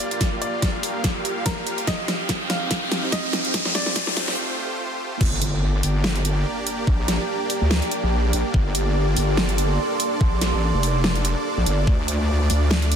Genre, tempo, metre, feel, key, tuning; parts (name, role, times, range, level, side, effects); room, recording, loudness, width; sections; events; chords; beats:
heavy wobble dubstep; 144 BPM; 4/4; swing 55% on 16ths, half-time; G minor; A4 = 439 Hz
bright grand piano; melody; 0.0-4.0 s; Bb4 to F5; -32 LUFS; equal; ping-pong delay
supersaw pad; sustained chords; 0.0-13.0 s; A3 to F5; -28 LUFS; right 1 dB; sidechain pumping
dubstep drum kit; drums; 0.0-13.0 s; crash cymbal, hi-hat, snare drum; -25 LUFS; equal; overdrive
riser and impact; sound effects; 0.0-6.9 s; -28 LUFS; equal
deep dark ambient pad; texture; 0.0-13.0 s; C4 to C6; -30 LUFS; right 2 dB; chorus, built-in reverb, sidechain pumping
electronic kick drum; drums; 0.2-12.0 s; -22 LUFS; equal; overdrive
wobble bass; bass; 5.2-13.0 s; F1 to D2; -21 LUFS; equal; chorus, overdrive
light reverb; dense, heavily limited modern master, high-pass filter; -20 LUFS; side -8 dB against mid
0.0-5.2 A section; 5.2-13.0 B section
build-up 0.0-5.2; drum fill 0.0-4.4; riser 0.0-4.4; filter sweep 0.0-5.2; break 4.4-5.2; drop 5.2-13.0; impact 5.2-6.9
0.0 Gm7; 1.9 Cm; 3.5 Fadd9; 5.2 Gm; 11.9 Dm
| 0.21 0.62 1.04 1.46 | 1.87 2.29 2.71 3.12 | 3.54 3.96 4.37 4.79 | 5.21 5.62 6.04 6.46 | 6.87 7.29 7.71 8.12 | 8.54 8.96 9.37 9.79 | 10.21 10.62 11.04 11.46 | 11.87 12.29 12.71